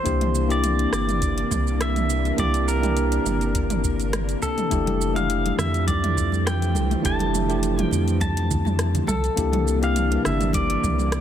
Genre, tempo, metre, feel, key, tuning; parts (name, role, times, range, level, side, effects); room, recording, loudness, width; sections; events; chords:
sunset chillout; 103 BPM; 4/4; swing 54% on 16ths; F major; A4 = 441 Hz
pedal steel guitar; melody; 0.0-11.2 s; A4 to A5; -27 LUFS; left 1 dB; tape echo
bell-like tine electric piano; accompaniment; 0.0-11.2 s; A3 to G4; -27 LUFS; moving between left 9 dB and right 8 dB; auto-pan, low-pass filter, tape echo
soft string machine; sustained chords; 0.0-11.2 s; C3 to D4; -30 LUFS; equal; ensemble chorus
warm sub bass; bass; 0.1-11.2 s; F1 to F2; -24 LUFS; equal
deep house drum kit; drums; 0.1-11.2 s; hi-hat, rim click, shaker, toms; -29 LUFS; right 2 dB; overdrive
electronic kick drum; drums; 0.1-11.0 s; -28 LUFS; equal
congas; percussion; 4.9-11.1 s; -32 LUFS; right 1 dB; analog delay
light reverb; echo-heavy mix; -20 LUFS; side -10 dB against mid
0.0-11.2 A section
0.0 C9; 4.7 Fmaj13; 9.1 C9